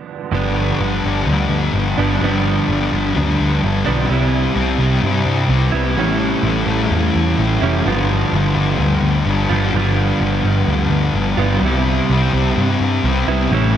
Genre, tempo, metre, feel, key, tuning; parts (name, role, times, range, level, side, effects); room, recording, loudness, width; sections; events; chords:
rock; 128 BPM; 4/4; straight; G mixolydian; A4 = 439 Hz
direct-recorded clean electric guitar; riff; 0.3-13.8 s; G2 to F4; -20 LUFS; right 6 dB; reverse reverb
thick fuzz guitar; riff; 0.3-13.8 s; G2 to C4; -18 LUFS; left 4 dB; distortion, analog chorus
vintage muted picked electric bass; bass; 0.3-13.8 s; F1 to G2; -19 LUFS; equal
wet cathedral reverb, RT60 5.9 s; dreamy mix soaked in reverb; -14 LUFS; side -10 dB against mid
0.4-13.8 A section
0.4 G7; 4.1 Cmaj7; 6.0 A7; 7.9 G7; 11.6 C